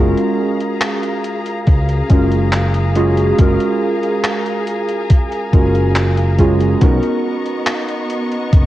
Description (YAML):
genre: vaporwave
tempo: 70 BPM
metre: 4/4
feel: straight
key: F# major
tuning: A4 = 438 Hz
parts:
  - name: warbly lo-fi synth keys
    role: accompaniment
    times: 0.0-8.7 s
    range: G#3 to A#4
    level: -18 LUFS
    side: right 2 dB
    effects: lush chorus, vintage 12-bit sampler grit, analog delay
  - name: clear studio string section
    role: sustained chords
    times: 0.0-8.7 s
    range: B3 to C#6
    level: -23 LUFS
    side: left 2 dB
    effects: none
  - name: fingered electric bass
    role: bass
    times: 0.0-8.7 s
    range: F#1 to C#2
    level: -16 LUFS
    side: equal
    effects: none
  - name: gated 80s digital drum machine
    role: drums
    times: 0.2-8.7 s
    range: handclaps, hi-hat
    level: -23 LUFS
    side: equal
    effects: gated reverb
  - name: electronic kick drum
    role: drums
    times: 1.7-8.7 s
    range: none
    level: -12 LUFS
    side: equal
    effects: none
room: light reverb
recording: worn, warbling old tape, cassette tape, warbly pitch drift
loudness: -13 LUFS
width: side -15 dB against mid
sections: 0.0-8.7 A section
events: none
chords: 0.0 F#maj9; 6.8 Bmaj9